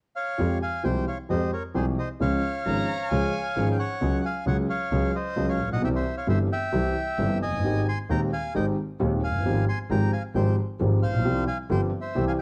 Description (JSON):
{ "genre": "tango", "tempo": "133 BPM", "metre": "4/4", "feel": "rubato", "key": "F minor", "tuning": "A4 = 437 Hz", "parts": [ { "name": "bandoneon", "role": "melody", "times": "0.2-12.4 s", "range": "Ab4 to C6", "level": "-33 LUFS", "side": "equal", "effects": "plate reverb" }, { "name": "dark concert grand piano", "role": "accompaniment", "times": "0.4-12.3 s", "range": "Eb1 to Ab4", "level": "-28 LUFS", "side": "equal", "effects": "none" }, { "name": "clear double bass", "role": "bass", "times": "0.4-12.3 s", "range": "Gb1 to F2", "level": "-31 LUFS", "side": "equal", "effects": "tube saturation" }, { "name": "warm violin", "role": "second line", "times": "2.7-3.6 s", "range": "Ab5 to Bb5", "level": "-37 LUFS", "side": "equal", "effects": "none" } ], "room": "moderate studio reverb, RT60 0.7 s", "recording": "worn, warbling old tape, cassette tape, warbly pitch drift", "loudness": "-26 LUFS", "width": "mono", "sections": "0.4-12.4 A section", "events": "none", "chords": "0.4 Fmadd9; 2.2 Db; 4.0 Gbsus2/Db; 5.8 C; 7.6 Abmaj7; 9.4 Fmadd9/Ab; 11.2 Csus4" }